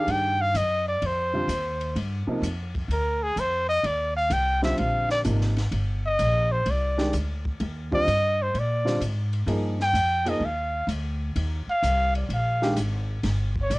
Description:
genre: modal jazz.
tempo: 128 BPM.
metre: 4/4.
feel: swing 67% on 8ths.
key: Eb major.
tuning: A4 = 440 Hz.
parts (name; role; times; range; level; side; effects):
warm trumpet; melody; 0.0-13.8 s; Ab4 to G5; -24 LUFS; equal; none.
warm upright piano; accompaniment; 0.0-12.8 s; C3 to Ab4; -28 LUFS; right 1 dB; cassette tape.
upright bass; bass; 0.1-13.8 s; G1 to Bb2; -26 LUFS; equal; none.
compact cocktail drum kit; drums; 0.1-13.8 s; hi-hat, kick drum, ride cymbal, snare drum; -37 LUFS; left 1 dB; none.
room: little or no reverb.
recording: home recording on cassette.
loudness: -23 LUFS.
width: side -22 dB against mid.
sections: 0.0-13.8 A section.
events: trumpet solo 0.0-13.8.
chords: 0.0 Ebmaj9.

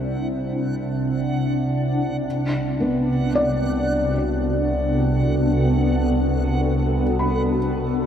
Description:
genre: ambient.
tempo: 55 BPM.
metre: 4/4.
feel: straight.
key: unclear.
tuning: A4 = 443 Hz.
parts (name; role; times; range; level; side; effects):
shimmering ambient pad; sustained chords; 0.0-8.1 s; C3 to A4; -22 LUFS; equal; chorus, built-in reverb, phaser.
felt-muted upright piano; arpeggios; 0.0-8.1 s; B3 to B5; -26 LUFS; equal; ping-pong delay.
warm chamber double bass section; bass; 0.0-8.1 s; C2; -25 LUFS; equal; none.
overtone-sweeping drone; drone; 0.4-8.1 s; C3 to G3; -39 LUFS; equal; none.
backwards swelling texture; texture; 0.1-8.1 s; F#5; -36 LUFS; right 2 dB; built-in reverb.
room: wet cathedral reverb, RT60 6.2 s.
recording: in a vast, echoing space.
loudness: -19 LUFS.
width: side -9 dB against mid.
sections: 0.0-8.1 A section.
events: fade-in on synth texture 0.0-8.1.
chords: 0.0 C; 2.3 Bm7/C.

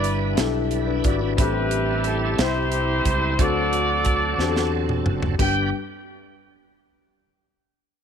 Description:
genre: slow gospel.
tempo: 60 BPM (dotted quarters).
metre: 6/8.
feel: straight.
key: G major.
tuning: A4 = 435 Hz.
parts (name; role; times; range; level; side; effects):
warm horn section; melody; 0.0-5.7 s; E4 to G5; -24 LUFS; right 1 dB; none.
warm grand piano; accompaniment; 0.0-5.7 s; G2 to D5; -26 LUFS; left 11 dB; none.
bright tonewheel organ; sustained chords; 0.0-5.7 s; F#3 to B4; -31 LUFS; right 13 dB; slow rotary speaker, chorus vibrato.
fingered electric bass; bass; 0.0-5.7 s; F#1 to E2; -26 LUFS; right 2 dB; none.
tight funk drum kit; drums; 0.0-5.5 s; crash cymbal, hi-hat, kick drum, snare drum, toms; -24 LUFS; right 2 dB; none.
room: light reverb, studio ambience.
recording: 1960s-style stereo with parts hard left and right.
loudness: -19 LUFS.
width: side -7 dB against mid.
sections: 0.0-5.4 A section; 5.4-7.4 B section.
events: drum fill 4.4-5.4.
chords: 0.0 Em7/G; 1.4 Am7; 3.4 D7; 5.4 G.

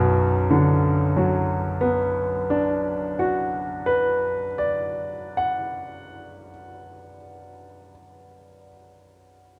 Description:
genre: classical, romantic nocturne for solo piano.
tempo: 28 BPM (dotted quarters).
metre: 12/8.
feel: rubato.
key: B minor.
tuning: A4 = 439 Hz.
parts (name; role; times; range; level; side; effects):
warm grand piano; solo; 0.0-9.6 s; B1 to D6; -24 LUFS; equal; none.
room: moderate scoring stage reverb, RT60 1.9 s.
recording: none.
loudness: -23 LUFS.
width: mono.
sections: 0.0-7.4 A section.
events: none.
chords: 0.0 Bm.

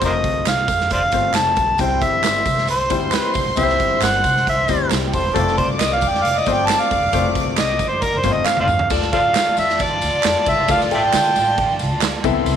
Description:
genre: uptempo 1960s-style soul.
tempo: 135 BPM.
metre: 4/4.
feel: straight.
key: unclear.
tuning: A4 = 440 Hz.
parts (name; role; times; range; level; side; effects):
clear upright piano; accompaniment; 0.0-12.6 s; G3 to E5; -24 LUFS; left 12 dB; none.
upright bass; bass; 0.0-12.6 s; E1 to D3; -26 LUFS; equal; none.
raw garage drum kit; drums; 0.0-12.6 s; crash cymbal, hi-hat, kick drum, ride cymbal, snare drum, toms; -23 LUFS; right 4 dB; none.
tambourine and handclaps; percussion; 0.0-12.6 s; none; -28 LUFS; right 3 dB; none.
overdriven harmonica; melody; 0.1-11.8 s; A4 to A5; -18 LUFS; right 1 dB; none.
warm studio violin section; second line; 1.8-12.6 s; F4 to D6; -25 LUFS; left 1 dB; none.
room: moderate plate reverb, RT60 1.1 s, small room reverb.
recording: 1960s-style stereo.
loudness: -15 LUFS.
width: side -8 dB against mid.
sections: 0.0-8.9 A section; 8.9-12.6 B section.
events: harmonica solo 0.0-8.9; drum fill 8.5-8.9.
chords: 0.0 F; 1.8 C; 5.4 F; 8.9 Dm.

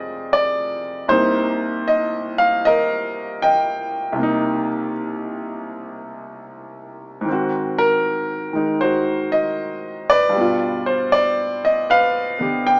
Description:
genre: solo jazz.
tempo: 78 BPM.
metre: 4/4.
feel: swing 67% on 8ths.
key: C minor.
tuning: A4 = 444 Hz.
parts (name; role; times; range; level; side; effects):
warm concert grand piano; solo; 0.0-12.8 s; C2 to G5; -20 LUFS; equal; none.
room: light reverb.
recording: small speaker sound.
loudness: -20 LUFS.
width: mono.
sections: 0.0-12.8 A section.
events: none.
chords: 0.0 Fm7; 1.1 Cm7; 7.3 Ab7; 10.3 G7.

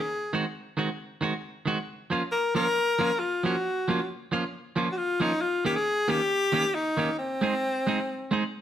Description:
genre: ska.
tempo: 135 BPM.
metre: 4/4.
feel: swing 56% on 8ths.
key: Db major.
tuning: A4 = 443 Hz.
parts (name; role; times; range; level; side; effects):
clear tenor saxophone; melody; 0.0-8.5 s; C4 to Bb4; -26 LUFS; left 2 dB; none.
clean electric guitar; accompaniment; 0.3-8.4 s; Eb3 to Ab4; -28 LUFS; right 2 dB; none.
room: moderate stone room reverb, RT60 1.1 s.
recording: band playing live in one room.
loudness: -25 LUFS.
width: side -10 dB against mid.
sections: 0.0-8.6 A section.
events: none.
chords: 0.1 Ab7; 1.9 Db6; 5.4 Eb7; 7.2 Ab.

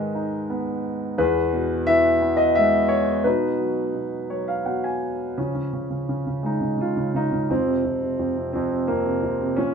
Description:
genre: classical, lyrical solo piano.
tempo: 87 BPM.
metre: 3/4.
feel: rubato.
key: unclear.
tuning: A4 = 440 Hz.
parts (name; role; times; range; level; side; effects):
dark grand piano; solo; 0.0-9.7 s; E2 to Ab5; -20 LUFS; equal; none.
room: light reverb.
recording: minimal, uncompressed stereo recording.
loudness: -20 LUFS.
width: side -6 dB against mid.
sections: 0.0-5.4 A section; 5.4-9.7 B section.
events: grand piano fill 3.9-5.4.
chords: 0.0 Abm; 1.2 E; 3.2 Cb; 5.4 Db; 7.5 F5.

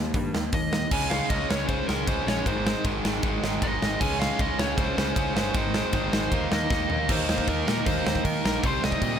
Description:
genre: punk rock.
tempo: 155 BPM.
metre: 4/4.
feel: straight.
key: unclear.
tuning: A4 = 441 Hz.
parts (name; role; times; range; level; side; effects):
cranked stack guitar; riff; 0.0-9.2 s; Ab2 to Eb4; -31 LUFS; left 14 dB; overdrive.
overdriven electric guitar; riff; 0.0-9.2 s; Ab2 to Eb4; -31 LUFS; right 11 dB; none.
fuzz picked electric bass; bass; 0.0-9.2 s; G1 to Eb3; -31 LUFS; equal; overdrive.
big rock drum kit; drums; 0.1-9.1 s; crash cymbal, hi-hat, kick drum, ride cymbal, snare drum, toms; -27 LUFS; right 1 dB; none.
dark smooth lead guitar; melody; 0.5-9.2 s; Bb4 to Ab5; -30 LUFS; equal; overdrive, ping-pong delay.
room: little or no reverb.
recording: none.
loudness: -23 LUFS.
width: side -8 dB against mid.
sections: 0.9-7.1 A section; 7.1-9.2 B section.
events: drum fill 6.7-7.1.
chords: 0.0 Eb; 0.9 Db5; 2.5 Ab; 4.0 Db5; 5.6 Ab; 6.3 Eb5; 8.6 Cm.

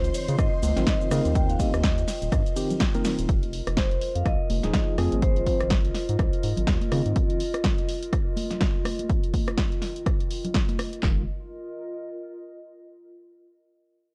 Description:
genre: deep house.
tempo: 124 BPM.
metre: 4/4.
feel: swing 58% on 16ths.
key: F minor.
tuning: A4 = 440 Hz.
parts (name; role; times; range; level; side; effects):
vibraphone with medium mallets; melody; 0.0-5.7 s; C5 to G5; -34 LUFS; equal; vintage 12-bit sampler grit, analog delay.
mellow tine electric piano; stabs; 0.0-7.4, 11.0-11.2 s; Eb3 to Bb4; -33 LUFS; equal; overdrive, medium tremolo, sidechain pumping.
round analog bass; bass; 0.0-7.1, 11.0-11.3 s; Eb1 to Db3; -29 LUFS; equal; sidechain pumping.
punchy analog drum machine; drums; 0.0-11.0 s; hi-hat, ride cymbal, rim click, shaker, snare drum; -33 LUFS; equal; none.
string machine, violins; texture; 0.0-3.3 s; C5 to C6; -45 LUFS; equal; ensemble chorus.
warbly tape-like pad; texture; 0.0-12.9 s; Eb3 to Eb5; -37 LUFS; equal; chorus, built-in reverb, sidechain pumping.
punchy analog drum machine; drums; 0.4-11.2 s; handclaps, kick drum, snare drum; -28 LUFS; equal; none.
congas; percussion; 0.6-10.8 s; none; -37 LUFS; equal; none.
room: little or no reverb.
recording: dry, gritty hardware recording.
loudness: -25 LUFS.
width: mono.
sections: 0.0-3.3 A section; 3.3-11.0 B section; 11.0-13.0 C section.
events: drop 0.0-3.3; drum fill 3.0.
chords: 0.0 Dbmaj9; 1.4 Cm7/Eb; 3.3 Fm7; 5.2 Ab6; 6.9 Dbmaj9 (rootless); 9.1 Ebsus2; 11.0 F7(no3).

